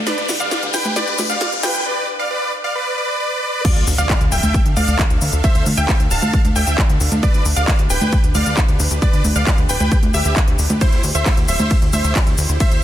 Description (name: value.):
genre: uplifting trance.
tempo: 134 BPM.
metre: 4/4.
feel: straight.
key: D dorian.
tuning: A4 = 445 Hz.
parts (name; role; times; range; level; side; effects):
supersaw pad; sustained chords; 0.0-12.8 s; D4 to F5; -30 LUFS; right 2 dB; sidechain pumping.
plucky analog bass; bass; 0.0-12.8 s; D1 to D2; -20 LUFS; equal; sidechain pumping, high-pass filter.
riser and impact; sound effects; 0.0-5.4 s; none; -26 LUFS; left 1 dB; none.
big supersaw lead; melody; 0.1-12.8 s; E4 to A5; -22 LUFS; right 1 dB; sidechain pumping, tape echo.
wide unison pluck; second line; 0.1-12.8 s; C5 to A5; -28 LUFS; right 1 dB; sidechain pumping, tape echo.
techno drum kit; drums; 0.1-12.8 s; congas, crash cymbal, handclaps, hi-hat, ride cymbal, shaker, snare drum; -21 LUFS; equal; overdrive, high-pass filter on snare, studio ambience, sidechain pumping on hats, high-pass filter on hats, sidechain pumping on perc, high-pass filter on perc, sidechain pumping on cymbals, high-pass filter on cymbals.
electronic kick drum; drums; 3.6-12.7 s; none; -16 LUFS; equal; overdrive, studio ambience.
room: light reverb.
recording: dense, heavily limited modern master, high-pass filter.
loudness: -14 LUFS.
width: side -12 dB against mid.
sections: 0.0-3.6 A section; 3.6-12.8 B section.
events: build-up 0.0-3.6; drum fill 0.0-1.9; riser 0.0-1.9; break 1.9-3.6; drop 3.6-12.8; impact 3.6-5.4.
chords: 0.1 G/D; 3.6 Dmadd9; 7.2 G/D; 10.8 C/D.